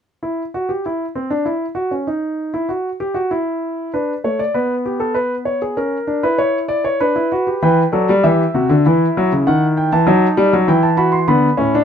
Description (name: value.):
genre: classical, baroque-style 3-part fugue for grand piano.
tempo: 98 BPM.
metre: 3/4.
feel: straight.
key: E minor.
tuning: A4 = 440 Hz.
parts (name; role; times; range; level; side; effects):
warm concert grand piano; solo; 0.2-11.8 s; A2 to C6; -15 LUFS; equal; none.
room: little or no reverb.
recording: close, detailed microphones.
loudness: -15 LUFS.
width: side -8 dB against mid.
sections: 0.2-11.8 A section.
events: none.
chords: 0.2 N.C.; 3.9 Bm; 5.2 C#5/B; 5.8 C#m6; 7.0 Bm/D; 7.6 Em; 8.8 F#5/E; 9.5 D#dim; 10.7 Em; 11.3 Bm.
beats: | 0.22 0.84 1.46 | 2.08 2.69 3.31 | 3.93 4.54 5.16 | 5.77 6.39 7.00 | 7.62 8.23 8.84 | 9.45 10.06 10.68 | 11.29.